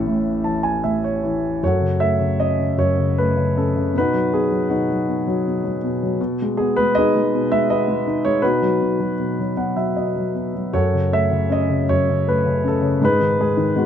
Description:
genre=classical, lyrical solo piano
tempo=79 BPM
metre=3/4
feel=rubato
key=F# dorian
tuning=A4 = 440 Hz
part: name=dark grand piano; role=solo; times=0.0-13.9 s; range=A1 to A5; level=-17 LUFS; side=equal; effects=none
room=moderate studio reverb, RT60 0.7 s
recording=dark, warm production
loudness=-17 LUFS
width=side -9 dB against mid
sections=0.0-1.6 A section; 1.6-13.9 B section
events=grand piano fill 0.1-1.6, 9.2-10.7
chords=0.0 A; 1.6 F#m; 3.9 B; 6.2 G#m/B; 8.4 B; 10.7 F#m; 13.0 G#m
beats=0.05 0.83 | 1.62 2.40 3.18 | 3.94 4.70 5.44 | 6.19 6.94 7.68 | 8.43 9.18 9.96 | 10.74 11.50 12.26 | 13.01 13.74

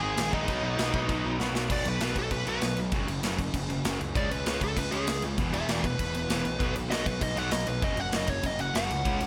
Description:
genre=punk rock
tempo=196 BPM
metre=4/4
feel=straight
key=B major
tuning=A4 = 440 Hz
part: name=smooth overdriven lead guitar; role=melody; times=0.0-9.3 s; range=D#4 to G#5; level=-34 LUFS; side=equal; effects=none
part: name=distorted electric guitar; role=riff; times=0.0-9.3 s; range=E2 to C#4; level=-37 LUFS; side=equal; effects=distortion
part: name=sludgy distorted guitar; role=riff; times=0.0-9.3 s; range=E2 to C#4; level=-38 LUFS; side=equal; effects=overdrive
part: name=fuzz picked electric bass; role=bass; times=0.0-9.3 s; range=E1 to C#2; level=-36 LUFS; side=equal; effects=overdrive
part: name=big rock drum kit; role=drums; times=0.2-9.3 s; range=crash cymbal, kick drum, snare drum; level=-34 LUFS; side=equal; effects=none
room=light reverb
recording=none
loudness=-29 LUFS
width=mono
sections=0.0-1.7 A section; 1.7-9.3 B section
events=drum fill 1.4-1.7; lead electric guitar solo 1.7-9.3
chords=0.5 B; 2.9 F#5; 4.2 C#5; 5.4 E5; 6.6 B5; 7.8 F#5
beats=0.18 | 0.48 0.79 1.09 1.40 | 1.70 2.01 2.31 2.62 | 2.93 3.23 3.54 3.85 | 4.16 4.46 4.77 5.08 | 5.38 5.69 5.99 6.30 | 6.61 6.91 7.22 7.52 | 7.83 8.13 8.44 8.74 | 9.05

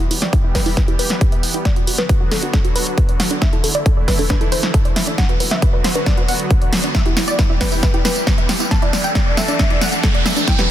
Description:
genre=uplifting trance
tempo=136 BPM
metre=4/4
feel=straight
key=E minor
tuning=A4 = 440 Hz
part: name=wide unison pluck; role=melody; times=0.0-10.7 s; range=E4 to A5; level=-24 LUFS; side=equal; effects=sidechain pumping, dub echo
part: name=supersaw pad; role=sustained chords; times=0.0-10.7 s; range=D3 to A4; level=-26 LUFS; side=right 1 dB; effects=sidechain pumping
part: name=wide unison pluck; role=arpeggios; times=0.0-10.6 s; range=D4 to G5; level=-29 LUFS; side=right 3 dB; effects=sidechain pumping, dub echo
part: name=punchy analog drum machine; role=drums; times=0.0-10.7 s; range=hi-hat, snare drum, tambourine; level=-20 LUFS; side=equal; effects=overdrive
part: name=electronic kick drum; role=drums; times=0.3-10.6 s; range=none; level=-16 LUFS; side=equal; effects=none
part: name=riser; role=sound effects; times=8.0-10.7 s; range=none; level=-26 LUFS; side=right 1 dB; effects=none
room=light reverb, digital ambience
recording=dense, heavily limited modern master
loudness=-14 LUFS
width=side -12 dB against mid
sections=0.0-10.7 A section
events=build-up 0.0-10.7; drum fill 0.0-10.7; filter sweep on synth pluck 0.0-10.7; filter sweep on synth arpeggio sound 0.0-10.7; riser 8.0-10.7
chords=0.0 Em; 1.7 Bm; 3.4 Dsus2; 5.2 Bm; 6.9 Em; 8.7 Dsus2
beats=0.33 0.77 1.21 | 1.65 2.09 2.54 2.98 | 3.42 3.86 4.30 4.74 | 5.18 5.62 6.07 6.51 | 6.95 7.39 7.83 8.27 | 8.71 9.15 9.59 10.04 | 10.48

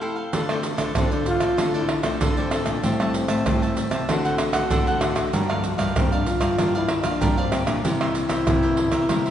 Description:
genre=samba and choro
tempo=96 BPM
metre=4/4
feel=straight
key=D minor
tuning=A4 = 440 Hz
part: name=cavaquinho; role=accompaniment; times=0.0-9.3 s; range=D4 to A5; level=-29 LUFS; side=right 2 dB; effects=none
part: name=nylon-string guitar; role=accompaniment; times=0.0-9.3 s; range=G2 to G4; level=-30 LUFS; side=left 4 dB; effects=none
part: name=nylon-string guitar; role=bass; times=0.3-9.3 s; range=G2 to D3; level=-27 LUFS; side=equal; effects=none
part: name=tube shaker, surdo, pandeiro and tamborim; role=percussion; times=0.3-9.3 s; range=none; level=-24 LUFS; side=right 1 dB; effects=none
part: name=breathy trombone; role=melody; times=1.0-9.3 s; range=C4 to F4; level=-26 LUFS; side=left 1 dB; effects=none
room=wet church reverb, RT60 3.4 s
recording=recorded in a church or concert hall, nothing above 10.3 kHz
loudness=-20 LUFS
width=side -10 dB against mid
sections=0.3-9.3 A section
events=break 0.0-0.3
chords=0.3 Dm7; 2.8 Am7; 4.1 D7; 5.3 Gm7; 7.8 C7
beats=| 0.33 0.96 1.58 2.21 | 2.83 3.46 4.08 4.71 | 5.33 5.96 6.59 7.21 | 7.84 8.47 9.09

